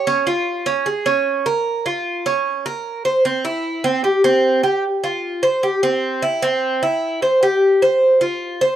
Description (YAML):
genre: latin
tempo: 151 BPM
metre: 4/4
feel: straight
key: F minor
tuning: A4 = 440 Hz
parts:
  - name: Cuban tres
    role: solo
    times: 0.0-8.8 s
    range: C4 to C5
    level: -16 LUFS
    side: right 1 dB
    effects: none
room: small room ambience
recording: dry, close 1970s-style studio recording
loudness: -16 LUFS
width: side -11 dB against mid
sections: 0.0-4.8 A section; 4.8-8.8 B section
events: none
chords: none